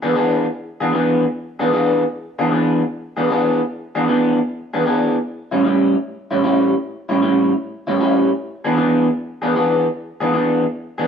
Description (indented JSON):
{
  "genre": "blues",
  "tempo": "153 BPM",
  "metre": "4/4",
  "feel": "swing 67% on 8ths",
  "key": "E mixolydian",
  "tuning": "A4 = 440 Hz",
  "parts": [
    { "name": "electric guitar through a small old amp", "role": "solo", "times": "0.0-11.1 s", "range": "A2 to G#4", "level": "-16 LUFS", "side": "equal", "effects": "phaser" }
  ],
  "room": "wet stone room reverb, RT60 1.0 s",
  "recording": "band playing live in one room",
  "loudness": "-16 LUFS",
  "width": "side -7 dB against mid",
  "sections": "0.0-11.1 A section",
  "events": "none",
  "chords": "0.0 E7; 5.2 A7; 8.4 E7"
}